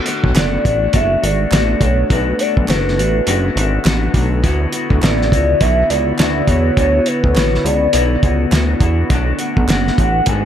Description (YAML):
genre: indie pop, bedroom pop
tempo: 103 BPM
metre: 4/4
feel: swing 60% on 16ths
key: B minor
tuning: A4 = 440 Hz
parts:
  - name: electric guitar through a small old amp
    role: accompaniment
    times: 0.0-10.4 s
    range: B2 to F#4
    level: -21 LUFS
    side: left 5 dB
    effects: lush chorus, warbly pitch drift
  - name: phased analog pad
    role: sustained chords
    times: 0.0-10.4 s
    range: D3 to F#4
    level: -25 LUFS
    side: right 1 dB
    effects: phaser, chorus
  - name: cloth-damped thuddy drum kit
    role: drums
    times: 0.1-10.4 s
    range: hi-hat, kick drum, snare drum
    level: -17 LUFS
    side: equal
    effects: none
  - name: chorused synth bass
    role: bass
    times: 0.2-10.4 s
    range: F#1 to E2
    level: -17 LUFS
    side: equal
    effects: none
  - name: hollow clarinet-like synth lead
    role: melody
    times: 0.4-10.4 s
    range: B4 to G#5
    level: -19 LUFS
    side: equal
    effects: wide subtle chorus, dub echo
  - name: group handclap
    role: percussion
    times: 0.4-9.8 s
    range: none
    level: -30 LUFS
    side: right 4 dB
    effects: none
room: little or no reverb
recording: echo-heavy mix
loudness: -13 LUFS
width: side -10 dB against mid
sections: 0.0-10.4 A section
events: none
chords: 0.0 Bm7; 4.4 D69; 9.1 Bm7